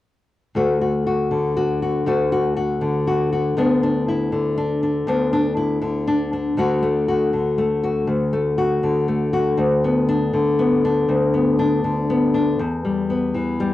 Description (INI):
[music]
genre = folk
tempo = 120 BPM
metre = 3/4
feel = straight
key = D major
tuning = A4 = 440 Hz
[part]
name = nylon-string guitar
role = solo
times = 0.6-13.7 s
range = D2 to F#4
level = -18 LUFS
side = left 2 dB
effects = cassette tape
[sound]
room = light reverb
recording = home recording on cassette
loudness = -18 LUFS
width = side -14 dB against mid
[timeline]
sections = 0.6-6.6 A section; 6.6-13.7 B section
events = none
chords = 0.6 D; 3.6 Bm/D; 6.6 D; 9.6 Bm/D; 12.6 Em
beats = | 0.56 1.06 1.56 | 2.06 2.57 3.07 | 3.57 4.07 4.58 | 5.08 5.58 6.08 | 6.58 7.08 7.58 | 8.09 8.59 9.09 | 9.59 10.09 10.59 | 11.09 11.59 12.09 | 12.59 13.09 13.59